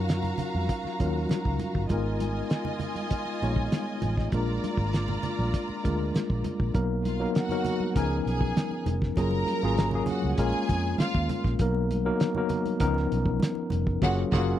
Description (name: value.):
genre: lush 1970s-style soul.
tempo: 99 BPM.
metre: 4/4.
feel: straight.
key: G# dorian.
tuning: A4 = 440 Hz.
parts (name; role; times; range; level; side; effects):
rich studio string section; second line; 0.0-14.5 s; E#4 to A#5; -33 LUFS; right 1 dB; none.
mellow tine electric piano; accompaniment; 0.0-14.6 s; E#3 to C#5; -29 LUFS; left 2 dB; medium stereo tremolo.
vintage muted fingered electric bass; bass; 0.0-14.5 s; E#1 to F#2; -29 LUFS; equal; none.
cloth-damped thuddy drum kit; drums; 0.1-14.5 s; crash cymbal, hi-hat, kick drum, snare drum; -28 LUFS; equal; none.
congas; percussion; 0.1-13.8 s; none; -36 LUFS; right 4 dB; none.
room: little or no reverb.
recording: dry, close 1970s-style studio recording.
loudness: -25 LUFS.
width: side -12 dB against mid.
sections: 0.0-6.7 A section; 6.7-14.6 B section.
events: band accent 14.0-14.6.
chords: 0.0 D#m9; 1.9 G#m69; 4.3 A#7; 6.7 Bmaj7; 8.0 C#13; 9.2 F#maj9; 10.4 A#m7; 11.6 Bmaj7; 12.8 C#13; 14.0 F#maj9.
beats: 0.09 0.69 1.30 | 1.90 2.51 3.12 3.72 | 4.33 4.93 5.54 6.14 | 6.75 7.35 7.96 8.56 | 9.17 9.78 10.38 10.99 | 11.59 12.20 12.81 13.41 | 14.02.